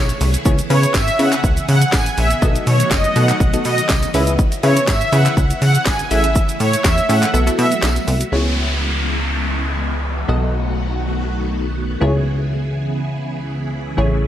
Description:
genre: dance-pop.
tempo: 122 BPM.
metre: 4/4.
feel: straight.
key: unclear.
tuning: A4 = 440 Hz.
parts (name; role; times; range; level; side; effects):
wavetable chord stab; accompaniment; 0.0-14.3 s; A3 to E5; -23 LUFS; left 1 dB; sidechain pumping.
phased string machine; sustained chords; 0.0-14.3 s; C#3 to G#4; -25 LUFS; equal; ensemble chorus, phaser, sidechain pumping.
plucky analog bass; bass; 0.0-14.3 s; F#1 to C#3; -18 LUFS; equal; sidechain pumping.
house drum kit; drums; 0.1-8.3 s; handclaps, hi-hat, kick drum, shaker, snare drum; -19 LUFS; equal; none.
supersaw pad; melody; 0.7-7.7 s; C#5 to G#5; -20 LUFS; right 1 dB; tape echo.
tambourine; percussion; 0.9-8.0 s; none; -32 LUFS; right 5 dB; none.
downlifter; sound effects; 8.3-12.3 s; none; -25 LUFS; equal; none.
room: little or no reverb.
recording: none.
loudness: -15 LUFS.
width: side -11 dB against mid.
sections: 0.0-8.3 A section; 8.3-14.3 B section.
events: drop 0.0-8.3; kick muted 7.3-8.3.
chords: 0.5 C#m7; 2.4 B7; 4.1 C#m7; 6.1 Amaj7; 7.3 B7sus4; 8.3 C#m7; 10.3 B7; 12.0 C#m7.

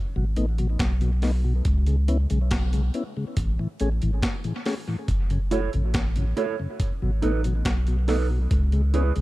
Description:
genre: dub reggae.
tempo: 70 BPM.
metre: 4/4.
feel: straight.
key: unclear.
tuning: A4 = 441 Hz.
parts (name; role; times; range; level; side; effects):
mellow tonewheel organ; accompaniment; 0.2-9.2 s; F#2 to G#4; -30 LUFS; left 2 dB; slow rotary speaker, dub echo.
soft dub sub bass; bass; 0.2-9.2 s; F#1 to C#2; -22 LUFS; equal; none.
breakbeat sampler-style drum kit; drums; 0.4-9.2 s; hi-hat, kick drum, snare drum; -28 LUFS; equal; dub echo.
mellow electric guitar; accompaniment; 5.5-9.1 s; D#4 to C#5; -29 LUFS; right 8 dB; harmonic tremolo, dub echo.
room: digital ambience.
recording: dry, close 1970s-style studio recording.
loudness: -22 LUFS.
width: side -18 dB against mid.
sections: 0.0-9.2 A section.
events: break 0.0-5.1.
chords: 0.0 B7(no3); 1.7 C#7(no3); 3.4 Amaj7(no3); 5.1 F#m7; 6.8 B7; 8.5 C#m7.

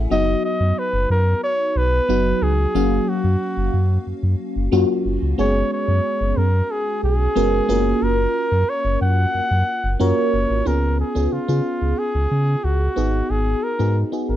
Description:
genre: 1980s-style pop.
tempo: 91 BPM.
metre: 4/4.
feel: straight.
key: F# major.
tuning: A4 = 443 Hz.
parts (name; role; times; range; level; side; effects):
FM electric piano with soft pad layer; accompaniment; 0.0-14.4 s; F#3 to G#5; -22 LUFS; equal; chorus, phaser.
sub bass with octave; bass; 0.0-14.4 s; F#1 to C#3; -20 LUFS; equal; none.
warm flugelhorn; melody; 0.1-14.4 s; E#4 to F#5; -22 LUFS; equal; slapback echo.
room: light reverb.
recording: dry, close 1970s-style studio recording.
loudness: -17 LUFS.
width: side -12 dB against mid.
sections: 0.1-10.7 A section; 10.7-14.4 B section.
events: none.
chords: 0.1 B/F#; 2.7 F#maj7; 5.4 C#7sus4/F#; 7.7 F#maj7; 10.7 C#7; 13.0 G#m7.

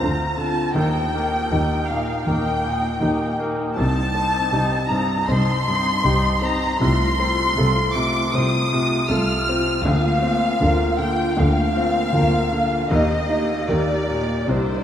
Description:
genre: cinematic.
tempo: 79 BPM.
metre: 4/4.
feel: rubato.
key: unclear.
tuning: A4 = 437 Hz.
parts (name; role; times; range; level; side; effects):
warm studio violin section; melody; 0.0-14.8 s; C5 to F6; -26 LUFS; equal; none.
warm studio violin section; second line; 0.0-14.8 s; C5 to F6; -25 LUFS; left 1 dB; none.
bright baby grand piano; accompaniment; 0.0-14.8 s; C2 to C5; -24 LUFS; equal; none.
warm studio viola section; accompaniment; 0.0-14.8 s; A3 to G4; -26 LUFS; left 1 dB; none.
warm studio cello section; bass; 0.0-14.8 s; C3 to Eb3; -26 LUFS; equal; none.
warm studio double bass section; bass; 0.0-14.8 s; C2 to Eb2; -25 LUFS; equal; none.
room: wet cathedral reverb, RT60 6.3 s.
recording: in a vast, echoing space, lossy compression artefacts.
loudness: -18 LUFS.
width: side -10 dB against mid.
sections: 0.0-14.8 A section.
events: none.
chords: 0.0 Bbadd9/D; 0.8 Eb; 3.8 Cm; 6.8 F/C; 9.9 Bbadd9/D; 12.9 Eb.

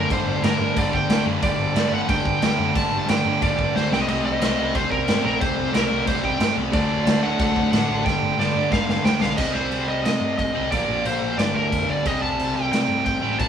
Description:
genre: punk rock.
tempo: 181 BPM.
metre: 4/4.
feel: straight.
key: G harmonic minor.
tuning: A4 = 440 Hz.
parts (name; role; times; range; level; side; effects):
smooth overdriven lead guitar; melody; 0.0-13.5 s; Bb4 to A5; -24 LUFS; right 1 dB; none.
fuzz guitar; riff; 0.0-9.4 s; G2 to Eb4; -32 LUFS; equal; none.
raw garage guitar; riff; 0.0-13.5 s; G2 to D4; -28 LUFS; right 6 dB; overdrive.
sludgy distorted guitar; riff; 0.0-13.5 s; G2 to D4; -27 LUFS; left 6 dB; overdrive.
hollow-body short-scale picked electric bass; bass; 0.0-13.5 s; F1 to C3; -30 LUFS; right 1 dB; none.
raw garage drum kit; drums; 0.1-13.5 s; crash cymbal, kick drum, snare drum; -24 LUFS; equal; none.
room: light reverb.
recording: band playing live in one room, small room ambience.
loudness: -19 LUFS.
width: side -8 dB against mid.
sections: 0.0-9.4 A section; 9.4-13.5 B section.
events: drum fill 3.8-4.1, 8.1-9.4; half time 9.4-13.5.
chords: 0.0 Gm; 3.9 Cm; 6.7 D; 8.1 G7; 9.4 Cm; 10.7 Bb; 11.4 Gm; 12.1 C5.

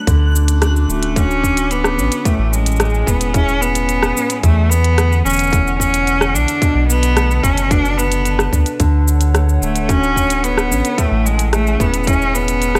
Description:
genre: folktronica.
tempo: 110 BPM.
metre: 4/4.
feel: straight.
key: unclear.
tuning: A4 = 440 Hz.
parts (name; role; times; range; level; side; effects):
warbly tape-like pad; sustained chords; 0.0-12.8 s; D3 to D6; -30 LUFS; equal; chorus, built-in reverb, vintage 12-bit sampler grit.
nylon-string guitar; arpeggios; 0.0-12.8 s; E2 to F#4; -26 LUFS; equal; vintage 12-bit sampler grit, digital delay.
round analog bass; bass; 0.1-12.8 s; D1 to E2; -19 LUFS; equal; none.
electronic kick drum; drums; 0.1-12.2 s; none; -18 LUFS; equal; studio ambience.
minimal click drum kit; drums; 0.1-12.8 s; hi-hat, rim click, shaker; -23 LUFS; equal; studio ambience.
bright cello; melody; 0.9-12.8 s; G#3 to D4; -20 LUFS; equal; digital delay.
room: digital ambience.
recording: none.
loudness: -15 LUFS.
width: mono.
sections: 0.1-12.8 A section.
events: none.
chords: 0.1 Dmaj7; 2.3 Amaj7; 4.4 E9sus4; 6.6 Bm7; 8.8 Dmaj7; 11.0 Amaj7.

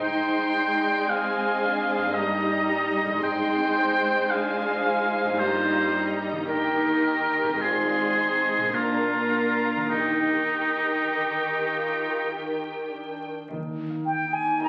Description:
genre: classical.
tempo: 49-57 BPM.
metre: 3/4.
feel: rubato.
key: Eb major.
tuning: A4 = 443 Hz.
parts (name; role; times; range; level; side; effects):
rich studio violin section; melody; 0.0-14.7 s; G5 to C6; -36 LUFS; equal; none.
clear oboe; second line; 0.0-12.3 s; Eb4 to G5; -27 LUFS; equal; none.
clear studio violin section; second line; 0.0-14.7 s; C4 to Eb5; -34 LUFS; equal; none.
concert harp; arpeggios; 0.0-14.7 s; G2 to C5; -35 LUFS; equal; none.
rich studio cello section; bass; 0.0-14.4 s; Eb3 to Bb4; -37 LUFS; equal; none.
rich studio viola section; accompaniment; 0.1-14.7 s; Eb3 to Eb4; -32 LUFS; equal; none.
clear studio double bass section; bass; 13.5-14.4 s; Eb2; -42 LUFS; equal; none.
small flute group; second line; 14.1-14.7 s; G5 to Bb5; -27 LUFS; equal; none.
room: wet recital hall reverb, RT60 1.5 s.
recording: very old 78 rpm record, vinyl crackle.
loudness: -25 LUFS.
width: mono.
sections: 0.0-13.5 A section; 13.5-14.7 B section.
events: none.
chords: 0.0 Abmaj7; 2.2 Eb/G; 3.2 Ab; 5.4 Eb/G; 6.5 Eb; 7.6 Ab; 8.7 Bb; 9.9 Eb.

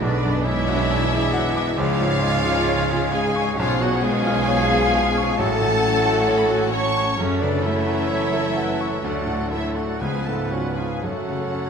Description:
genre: classical, romantic movement for piano and orchestra.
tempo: 58-69 BPM.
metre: 4/4.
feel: rubato.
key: F# minor.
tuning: A4 = 439 Hz.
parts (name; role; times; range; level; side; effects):
clear grand piano; melody; 0.0-11.7 s; A1 to D6; -25 LUFS; left 1 dB; none.
rich studio violin section; melody; 0.0-11.7 s; C#5 to C#6; -29 LUFS; left 1 dB; none.
hollow flute section; second line; 0.0-11.7 s; A4 to A5; -30 LUFS; left 2 dB; none.
rich studio violin section; second line; 0.0-11.7 s; G#3 to F#4; -30 LUFS; left 3 dB; none.
warm clarinet; second line; 0.0-11.7 s; E4 to C#5; -34 LUFS; left 2 dB; none.
warm oboe; second line; 0.0-11.7 s; A4 to D5; -35 LUFS; right 1 dB; none.
mellow bassoon; accompaniment; 0.0-11.7 s; E#3 to G#3; -32 LUFS; right 2 dB; none.
rich studio viola section; accompaniment; 0.0-11.7 s; C#4 to C#5; -28 LUFS; equal; none.
bright trombone section; sustained chords; 0.0-11.7 s; E#3 to C#4; -34 LUFS; right 4 dB; none.
mellow French horn section; sustained chords; 0.0-11.7 s; C#3 to C#4; -28 LUFS; left 4 dB; none.
warm trumpet; stabs; 0.0-11.7 s; C#4 to C#5; -29 LUFS; right 2 dB; none.
rich studio cello section; bass; 0.0-11.7 s; C#2 to C#3; -30 LUFS; right 3 dB; none.
rich studio double bass section; bass; 0.0-11.7 s; F#1 to D2; -30 LUFS; right 5 dB; none.
room: wet recital hall reverb, RT60 1.6 s.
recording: none.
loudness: -18 LUFS.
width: side -6 dB against mid.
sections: 0.0-11.7 A section.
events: none.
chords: 0.0 G#m7b5/B; 1.8 C#; 3.6 C#7/B; 5.4 F#m/A; 7.2 F#m; 9.0 D; 10.0 C#7; 11.0 F#m.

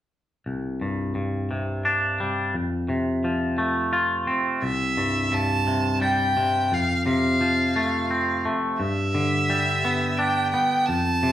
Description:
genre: rock.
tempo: 86 BPM.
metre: 3/4.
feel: straight.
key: C major.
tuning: A4 = 440 Hz.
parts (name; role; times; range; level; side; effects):
twangy electric guitar; arpeggios; 0.5-11.3 s; C2 to F4; -23 LUFS; left 1 dB; none.
rich violin; melody; 4.6-11.3 s; E5 to A5; -24 LUFS; right 1 dB; none.
room: wet large studio reverb, RT60 0.9 s.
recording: band playing live in one room.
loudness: -21 LUFS.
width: side -12 dB against mid.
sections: 0.5-4.6 A section; 4.6-11.3 B section.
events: none.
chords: 0.5 Csus2; 2.5 F; 4.6 C; 6.7 F; 8.8 G6.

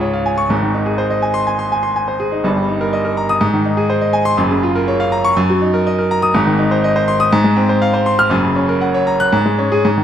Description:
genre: classical, virtuoso piano study.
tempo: 123 BPM.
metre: 4/4.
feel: rubato.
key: unclear.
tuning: A4 = 440 Hz.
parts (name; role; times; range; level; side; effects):
bright concert grand piano; solo; 0.0-10.0 s; Gb1 to Gb6; -13 LUFS; equal; none.
room: moderate scoring stage reverb, RT60 1.7 s.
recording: none.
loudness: -13 LUFS.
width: side -9 dB against mid.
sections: 0.0-10.0 A section.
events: none.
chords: 0.0 Db; 0.5 Ab; 2.4 Eb/G; 3.4 Ab; 4.4 Gbmaj7; 5.4 Ebm/Gb; 6.3 Ab; 7.3 Fm/Ab; 8.3 Gb; 9.3 Db5/Ab.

